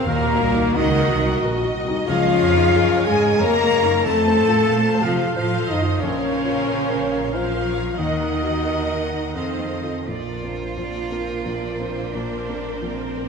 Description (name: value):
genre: cinematic, emotional film score for orchestra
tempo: 91 BPM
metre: 3/4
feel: rubato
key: Bb major from 10.1 s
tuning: A4 = 442 Hz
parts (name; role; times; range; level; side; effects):
- rich symphonic violin section; melody; 0.0-13.3 s; Bb4 to A5; -32 LUFS; left 3 dB; none
- clear symphonic violin section; second line; 0.0-13.3 s; Bb4 to Bb5; -30 LUFS; left 1 dB; none
- flute section; second line; 0.0-10.1 s; Bb4 to Bb5; -30 LUFS; left 2 dB; none
- mellow oboe; second line; 0.0-10.1 s; Bb4 to Bb5; -30 LUFS; right 3 dB; none
- dark grand piano; accompaniment; 0.0-13.3 s; Bb1 to Gb5; -29 LUFS; left 1 dB; none
- rich symphonic viola section; accompaniment; 0.0-13.3 s; Gb4 to Eb5; -30 LUFS; right 1 dB; none
- warm French horn section; sustained chords; 0.0-10.1 s; Bb3 to Bb4; -21 LUFS; left 4 dB; none
- concert harp; arpeggios; 0.0-13.3 s; Bb2 to C6; -32 LUFS; left 1 dB; none
- rich symphonic cello section; bass; 0.0-13.3 s; Bb2 to Bb3; -27 LUFS; right 3 dB; none
- rich symphonic double bass section; bass; 0.0-13.3 s; Bb1 to C3; -27 LUFS; right 4 dB; none
- rich cello; melody; 9.4-13.3 s; C4 to F4; -30 LUFS; right 5 dB; none
room: wet scoring stage reverb, RT60 1.7 s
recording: none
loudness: -18 LUFS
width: side -5 dB against mid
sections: 0.0-10.1 A section; 10.1-13.3 B section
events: none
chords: 0.1 Ebm; 2.1 Dbadd9; 4.0 F; 6.0 Bbmadd9; 8.0 Ebm; 9.4 F7; 10.1 Bbadd9